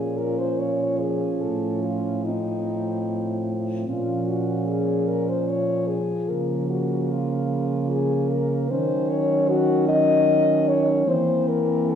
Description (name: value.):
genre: classical, lyrical piece for horn quartet.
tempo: 74 BPM.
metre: 3/4.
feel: rubato.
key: Bb minor.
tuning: A4 = 440 Hz.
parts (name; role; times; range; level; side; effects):
mellow French horn; melody; 0.0-12.0 s; Eb4 to Eb5; -24 LUFS; left 5 dB; none.
mellow French horn; second line; 0.0-12.0 s; Bb3 to Db4; -28 LUFS; right 8 dB; none.
dark French horn; accompaniment; 0.0-12.0 s; F3 to Bb3; -29 LUFS; left 1 dB; none.
mellow French horn; bass; 0.0-12.0 s; A2 to E3; -26 LUFS; right 2 dB; none.
room: wet recital hall reverb, RT60 1.3 s.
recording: heard from further back in the room.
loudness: -21 LUFS.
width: side -8 dB against mid.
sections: 0.0-12.0 A section.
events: none.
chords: 0.0 Bbm; 1.4 F7/A; 3.9 Bbm; 6.3 Bbm/Db; 8.7 Ebm7; 11.1 C7/E.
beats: 0.59 | 1.42 2.25 3.08 | 3.88 4.68 5.49 | 6.29 7.11 7.91 | 8.71 9.49 10.27 | 11.06 11.89.